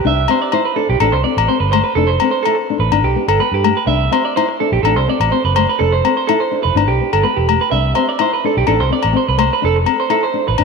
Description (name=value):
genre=highlife guitar band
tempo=125 BPM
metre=4/4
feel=swing 53% on 16ths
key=C major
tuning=A4 = 440 Hz
part: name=nylon-string guitar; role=accompaniment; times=0.0-10.6 s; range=A3 to E4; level=-20 LUFS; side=left 11 dB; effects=none
part: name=electric guitar through a small old amp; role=arpeggios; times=0.0-10.6 s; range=G4 to E5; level=-17 LUFS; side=right 9 dB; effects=slapback echo
part: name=fingered electric bass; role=bass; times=0.0-10.6 s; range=E1 to G2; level=-17 LUFS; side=right 1 dB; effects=none
part: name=agogo bells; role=percussion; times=0.3-10.6 s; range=none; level=-19 LUFS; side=left 13 dB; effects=none
room=moderate plate reverb, RT60 3.2 s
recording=1960s-style stereo with parts hard left and right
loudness=-13 LUFS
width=side -4 dB against mid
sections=0.1-10.6 A section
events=none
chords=0.1 Cadd9; 1.0 Amadd9; 2.0 Fmaj7; 2.9 Gadd9; 3.9 Cadd9; 4.8 Amadd9; 5.8 Fmaj7; 6.8 Gadd9; 7.7 Cadd9; 8.7 Amadd9; 9.6 Fmaj7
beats=| 0.05 0.53 1.01 1.49 | 1.97 2.45 2.93 3.41 | 3.88 4.37 4.84 5.32 | 5.80 6.28 6.76 7.24 | 7.72 8.20 8.68 9.16 | 9.64 10.12 10.60